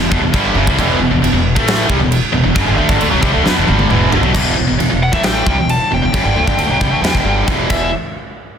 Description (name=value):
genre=heavy metal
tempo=134 BPM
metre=4/4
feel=straight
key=E minor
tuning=A4 = 444 Hz
part: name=heavy high-gain guitar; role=riff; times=0.0-7.9 s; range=E2 to B3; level=-18 LUFS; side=left 12 dB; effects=distortion
part: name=scooped high-gain guitar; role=riff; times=0.0-4.3 s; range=E2 to B3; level=-20 LUFS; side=right 1 dB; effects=distortion
part: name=tight distorted guitar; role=riff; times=0.0-7.9 s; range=E2 to B3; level=-18 LUFS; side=right 10 dB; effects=distortion
part: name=upright bass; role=bass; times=0.0-7.9 s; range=E1 to E2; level=-19 LUFS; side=equal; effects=none
part: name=big rock drum kit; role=drums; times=0.1-7.8 s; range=china cymbal, crash cymbal, kick drum, snare drum, toms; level=-18 LUFS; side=equal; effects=soft clipping on kick
part: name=high-gain lead guitar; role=melody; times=5.0-7.9 s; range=E5 to A5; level=-19 LUFS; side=left 1 dB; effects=distortion, tape echo
room=light reverb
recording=dense, heavily limited modern master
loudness=-12 LUFS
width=side -8 dB against mid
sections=0.0-4.3 A section; 4.3-7.9 B section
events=drum fill 3.5-4.3, 7.7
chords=0.0 Em; 7.7 E5; 7.9 N.C.